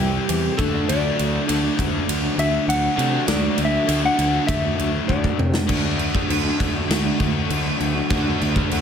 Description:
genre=quiet-loud alternative rock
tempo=100 BPM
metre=4/4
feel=straight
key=unclear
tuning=A4 = 439 Hz
part: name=mellow electric guitar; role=melody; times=0.0-5.6 s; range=G#4 to G5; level=-25 LUFS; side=left 2 dB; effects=none
part: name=fingerpicked steel-string acoustic guitar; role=arpeggios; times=0.0-8.8 s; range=C3 to G4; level=-28 LUFS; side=left 4 dB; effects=none
part: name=biting overdriven guitar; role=riff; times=0.0-8.8 s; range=C3 to F#4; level=-26 LUFS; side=left 13 dB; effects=none
part: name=overdriven electric guitar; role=riff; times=0.0-8.8 s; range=C3 to D4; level=-26 LUFS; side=right 12 dB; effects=harmonic tremolo
part: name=fuzz fingered electric bass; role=bass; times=0.0-8.8 s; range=C2 to C3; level=-26 LUFS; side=equal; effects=overdrive
part: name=big rock drum kit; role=drums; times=0.3-8.8 s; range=crash cymbal, kick drum, ride cymbal, snare drum, toms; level=-24 LUFS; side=right 1 dB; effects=none
room=moderate large studio reverb, RT60 0.9 s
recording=none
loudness=-18 LUFS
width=side -7 dB against mid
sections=0.0-5.7 A section; 5.7-8.8 B section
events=half time 0.0-5.7; clean electric guitar solo 0.0-5.7; drum fill 5.1-5.7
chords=0.0 C; 0.6 D

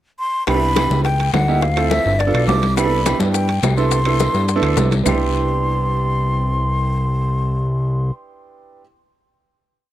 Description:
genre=Afro-Cuban jazz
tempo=210 BPM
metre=4/4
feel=straight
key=C major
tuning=A4 = 440 Hz
part: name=breathy mellow silver concert flute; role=melody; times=0.2-8.1 s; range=D5 to D6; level=-22 LUFS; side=left 1 dB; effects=none
part: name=clear grand piano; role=accompaniment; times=0.5-8.8 s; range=A#3 to A4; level=-22 LUFS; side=right 6 dB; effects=none
part: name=fat analog bass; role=bass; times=0.5-8.1 s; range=G1 to G2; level=-18 LUFS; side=left 1 dB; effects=none
part: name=bongos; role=percussion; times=0.5-5.1 s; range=none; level=-25 LUFS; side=left 11 dB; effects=none
part: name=claves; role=percussion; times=0.5-5.1 s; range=none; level=-32 LUFS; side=left 8 dB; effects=none
part: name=congas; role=percussion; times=0.5-5.1 s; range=none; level=-25 LUFS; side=left 1 dB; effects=none
part: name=guiro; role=percussion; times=0.5-5.1 s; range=none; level=-34 LUFS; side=left 13 dB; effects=none
part: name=timbales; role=percussion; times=0.5-5.1 s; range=none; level=-26 LUFS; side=right 6 dB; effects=none
part: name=maracas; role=percussion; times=2.8-5.1 s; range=none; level=-28 LUFS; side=left 20 dB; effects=none
room=small room ambience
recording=dry, close 1970s-style studio recording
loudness=-15 LUFS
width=side -13 dB against mid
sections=0.0-0.5 pickup bar; 0.5-5.1 A section; 5.1-7.4 final chord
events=none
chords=0.5 Cmaj9; 1.1 C#dim7; 1.6 Dm9; 2.2 G9; 2.8 Cmaj9

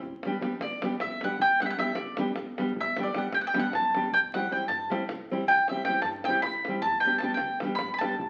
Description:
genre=balkan folk, Balkan wedding band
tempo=308 BPM (eighths)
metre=7/8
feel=straight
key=G major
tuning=A4 = 443 Hz
part: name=upright bass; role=bass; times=0.0-8.3 s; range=G1 to G2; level=-53 LUFS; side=equal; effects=none
part: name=davul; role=percussion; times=0.0-8.3 s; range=none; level=-40 LUFS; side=equal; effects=none
part: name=nylon-string guitar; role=accompaniment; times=0.3-8.1 s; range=G3 to G4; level=-34 LUFS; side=equal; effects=none
part: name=bowl-back mandolin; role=melody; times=0.6-8.3 s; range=D5 to B5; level=-28 LUFS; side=equal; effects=none
room=wet large studio reverb, RT60 0.9 s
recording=very old 78 rpm record, vinyl crackle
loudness=-28 LUFS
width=mono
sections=0.0-8.3 A section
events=mandolin solo 0.0-8.3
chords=0.0 G; 4.1 C; 6.9 G

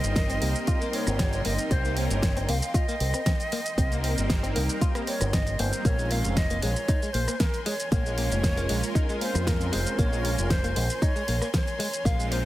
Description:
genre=nu-disco, nu disco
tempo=116 BPM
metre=4/4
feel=straight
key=Bb dorian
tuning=A4 = 440 Hz
part: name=breathy hollow jazz flute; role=melody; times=0.0-12.5 s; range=Bb4 to F5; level=-32 LUFS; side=equal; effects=digital delay
part: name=warm analog pad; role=accompaniment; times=0.0-12.4 s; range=C3 to Bb4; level=-33 LUFS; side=equal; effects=chorus, sidechain pumping
part: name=rich chamber string section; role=sustained chords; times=0.0-12.5 s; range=Bb4 to C6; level=-38 LUFS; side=left 1 dB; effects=sidechain pumping
part: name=fingered electric bass with an envelope filter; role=bass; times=0.0-12.4 s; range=F1 to F2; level=-28 LUFS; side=equal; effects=sidechain pumping
part: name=pop drum kit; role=drums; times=0.0-12.4 s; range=hi-hat, rim click, shaker, snare drum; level=-32 LUFS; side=equal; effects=none
part: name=electronic kick drum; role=drums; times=0.2-12.2 s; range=none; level=-26 LUFS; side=equal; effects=none
part: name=direct-recorded clean electric guitar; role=riff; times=0.3-12.4 s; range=Ab3 to F4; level=-35 LUFS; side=left 2 dB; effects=lush chorus
room=light reverb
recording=heavily compressed radio sound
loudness=-23 LUFS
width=side -15 dB against mid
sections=0.0-12.5 A section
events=none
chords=0.0 Cm7; 5.8 Bbm9

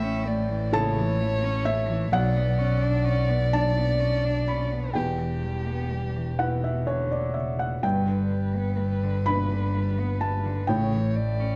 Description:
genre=neoclassical piano and strings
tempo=42 BPM (dotted quarters)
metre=6/8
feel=rubato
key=B minor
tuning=A4 = 440 Hz
part: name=dark violin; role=melody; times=0.0-11.6 s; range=G4 to E5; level=-34 LUFS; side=equal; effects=none
part: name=warm cello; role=second line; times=0.0-11.6 s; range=B2 to D4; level=-35 LUFS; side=equal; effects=none
part: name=felt-muted upright piano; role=accompaniment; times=0.0-11.6 s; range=B1 to B5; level=-30 LUFS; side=equal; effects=none
part: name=dark double bass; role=bass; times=0.0-11.6 s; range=E1 to B1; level=-29 LUFS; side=equal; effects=none
room=light reverb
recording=dark, warm production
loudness=-25 LUFS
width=mono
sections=0.0-11.6 A section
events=none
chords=0.0 A; 2.1 Bmadd9; 4.9 Em; 7.8 G; 10.7 A

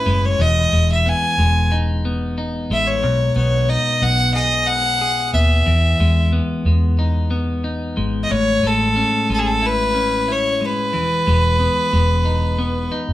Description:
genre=indie pop, bedroom pop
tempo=91 BPM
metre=4/4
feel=straight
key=E major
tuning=A4 = 440 Hz
part: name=clear fiddle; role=melody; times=0.0-12.9 s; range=G#4 to G#5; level=-18 LUFS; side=equal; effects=none
part: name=clean electric guitar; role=accompaniment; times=0.0-13.1 s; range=A2 to G#4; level=-22 LUFS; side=left 2 dB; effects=warbly pitch drift
part: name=vintage muted fingered electric bass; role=bass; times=0.1-13.1 s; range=E1 to E2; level=-19 LUFS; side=equal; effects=none
room=wet small room reverb, RT60 0.5 s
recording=band playing live in one room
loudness=-15 LUFS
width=side -14 dB against mid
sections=0.0-13.1 A section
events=none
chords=0.4 Emaj7; 3.0 B6; 5.7 Emaj7; 8.3 Amaj7; 10.9 Emaj7

